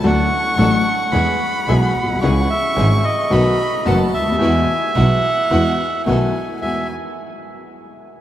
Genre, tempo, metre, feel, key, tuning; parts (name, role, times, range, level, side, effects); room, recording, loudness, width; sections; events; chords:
tango; 110 BPM; 4/4; rubato; E major; A4 = 440 Hz
warm violin; second line; 0.0-6.9 s; F#5 to C#6; -26 LUFS; left 1 dB
warm upright piano; accompaniment; 0.0-6.9 s; F#1 to A4; -20 LUFS; left 2 dB
bright studio string section; stabs; 0.0-6.9 s; G#3 to A4; -30 LUFS; right 2 dB
rich double bass; bass; 0.0-6.8 s; F#1 to E2; -19 LUFS; right 1 dB
bandoneon; melody; 0.1-6.9 s; D#5 to F#5; -20 LUFS; right 1 dB
wet cathedral reverb, RT60 5.6 s; in a vast, echoing space; -14 LUFS; side -12 dB against mid
0.0-6.6 A section; 6.6-8.2 B section
0.0 D; 1.1 E; 2.2 C#m; 3.3 B7; 4.4 Eadd9; 6.1 B7; 6.6 Eadd9